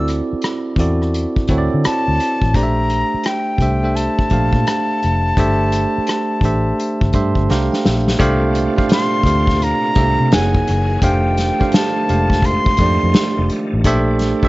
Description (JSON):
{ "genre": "R&B, neo-soul", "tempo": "85 BPM", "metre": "4/4", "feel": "swing 63% on 16ths", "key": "unclear", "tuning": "A4 = 440 Hz", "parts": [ { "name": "breathy concert flute", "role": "melody", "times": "0.0-13.5 s", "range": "G5 to C6", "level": "-20 LUFS", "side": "left 1 dB", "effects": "none" }, { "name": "bell-like tine electric piano", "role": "accompaniment", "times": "0.0-14.5 s", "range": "Ab3 to C6", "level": "-19 LUFS", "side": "right 2 dB", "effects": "auto-pan" }, { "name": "vintage muted fingered electric bass", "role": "bass", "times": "0.0-14.5 s", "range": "F1 to D3", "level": "-18 LUFS", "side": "equal", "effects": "none" }, { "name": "unplugged drum kit", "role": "drums", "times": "0.1-14.5 s", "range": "hi-hat, kick drum, rim click, snare drum", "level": "-18 LUFS", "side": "left 1 dB", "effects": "none" }, { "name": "bright tonewheel organ", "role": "sustained chords", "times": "8.2-14.5 s", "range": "Bb2 to A#4", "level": "-28 LUFS", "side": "equal", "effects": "slow rotary speaker, chorus vibrato" } ], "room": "small room ambience", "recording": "worn, warbling old tape, cassette tape, warbly pitch drift, nothing above 7.8 kHz", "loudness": "-14 LUFS", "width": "side -19 dB against mid", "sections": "0.0-8.2 A section; 8.2-14.5 B section", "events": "tine electric piano fill 6.8-8.2; drum fill 7.5-8.2", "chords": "0.0 D9; 2.5 Bbmaj9#11; 5.4 Gsus2; 7.5 C13sus4; 10.3 F#9; 11.0 F13; 13.8 Bbmaj9#11" }